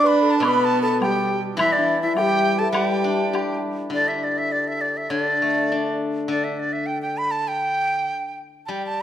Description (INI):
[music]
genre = chinese traditional, Chinese chamber ensemble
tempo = 101 BPM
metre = 2/4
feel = rubato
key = G gong mode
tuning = A4 = 440 Hz
[part]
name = breathy bright large dizi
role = melody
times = 0.0-9.0 s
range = D5 to D6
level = -22 LUFS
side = right 1 dB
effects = none
[part]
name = hammered dulcimer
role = second line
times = 0.0-5.9 s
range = E4 to D5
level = -26 LUFS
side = right 2 dB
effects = none
[part]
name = mellow low xiao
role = second line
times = 0.0-3.6 s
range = D4 to B4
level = -25 LUFS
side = left 8 dB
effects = none
[part]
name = warm cello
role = second line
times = 0.0-3.6 s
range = E3 to D4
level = -24 LUFS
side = right 3 dB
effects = none
[part]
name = steel-string zither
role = accompaniment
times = 0.4-9.0 s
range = B2 to G4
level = -26 LUFS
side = left 3 dB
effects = none
[part]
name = woodblock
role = percussion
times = 0.4-3.5 s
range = none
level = -30 LUFS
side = left 3 dB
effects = none
[sound]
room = moderate recital hall reverb, RT60 1.4 s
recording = none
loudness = -19 LUFS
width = side -10 dB against mid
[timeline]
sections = 0.0-3.9 A section; 3.9-9.0 B section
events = none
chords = none